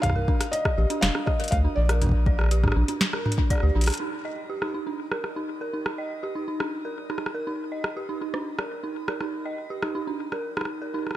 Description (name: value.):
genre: IDM.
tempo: 121 BPM.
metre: 4/4.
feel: straight.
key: Eb major.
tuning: A4 = 440 Hz.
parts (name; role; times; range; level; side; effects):
felt-muted upright piano; melody; 0.0-3.2 s; D5 to F5; -31 LUFS; equal; ping-pong delay, shimmer reverb.
booming analog drum machine; drums; 0.0-11.1 s; hi-hat, rim click, snare drum, toms; -29 LUFS; equal; low-pass filter on hats, low-pass filter on snare, low-pass filter on toms, ping-pong delay.
electronic kick drum; drums; 0.0-3.6 s; none; -24 LUFS; equal; none.
dark detuned synth bell; arpeggios; 0.2-11.0 s; D4 to Eb5; -30 LUFS; right 2 dB; chorus, low-pass filter, digital delay, shimmer reverb.
round analog bass; bass; 0.8-3.9 s; F1 to D2; -21 LUFS; equal; none.
room: light reverb.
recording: none.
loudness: -24 LUFS.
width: side -14 dB against mid.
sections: 0.0-4.0 A section; 4.0-11.2 B section.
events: drum fill 3.8; band accent 3.9.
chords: 0.0 Bb; 4.0 Eb5.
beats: | 0.03 0.53 1.02 1.52 | 2.02 2.51 3.01 3.50 | 4.00 4.50 4.99 5.49 | 5.98 6.48 6.97 7.47 | 7.97 8.46 8.96 9.45 | 9.95 10.45 10.94.